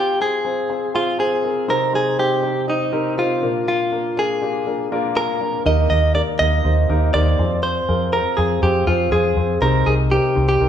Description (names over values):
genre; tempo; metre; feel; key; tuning
piano-driven pop; 121 BPM; 4/4; straight; unclear; A4 = 440 Hz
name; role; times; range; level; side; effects
direct-recorded clean electric guitar; melody; 0.0-10.7 s; Eb4 to Eb5; -19 LUFS; equal; none
warm baby grand piano; accompaniment; 0.0-10.7 s; Bb2 to Eb5; -22 LUFS; left 1 dB; none
vintage muted fingered electric bass; bass; 5.7-10.7 s; C2 to F2; -19 LUFS; equal; none
room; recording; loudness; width
wet large studio reverb, RT60 1.2 s; band playing live in one room; -16 LUFS; side -9 dB against mid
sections
0.0-10.7 A section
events
none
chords
0.0 Fm; 1.7 Cm; 3.4 Bb; 5.7 Eb; 7.4 Fm; 9.6 Cm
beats
0.20 0.70 1.20 | 1.69 2.19 2.68 3.18 | 3.67 4.17 4.66 5.16 | 5.66 6.15 6.65 7.14 | 7.64 8.13 8.63 9.12 | 9.62 10.12 10.61